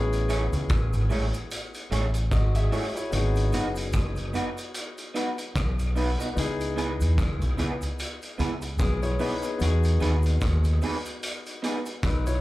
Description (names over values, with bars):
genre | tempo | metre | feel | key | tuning
lovers rock reggae | 74 BPM | 4/4 | swing 58% on 16ths | E major | A4 = 438 Hz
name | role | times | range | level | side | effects
warm concert grand piano | accompaniment | 0.0-12.4 s | B3 to E5 | -33 LUFS | left 3 dB | slapback echo
deep dub fingered electric bass | bass | 0.0-12.4 s | F#1 to E2 | -24 LUFS | equal | none
vintage drum kit | drums | 0.1-12.4 s | hi-hat, kick drum, rim click | -31 LUFS | equal | none
cabasa | percussion | 0.1-12.4 s | none | -50 LUFS | right 7 dB | none
electric guitar through a small old amp | stabs | 0.3-11.9 s | A3 to C#5 | -32 LUFS | right 2 dB | ensemble chorus, slapback echo
room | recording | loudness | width
studio ambience | live gig heard through the venue's PA, club ambience | -24 LUFS | side -17 dB against mid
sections
0.0-12.4 A section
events
none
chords
0.0 Amaj7; 3.1 G#m7; 6.4 C#m7; 9.6 Emaj7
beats
0.70 1.51 2.32 | 3.12 3.93 4.74 5.55 | 6.36 7.17 7.98 8.79 | 9.60 10.41 11.22 12.03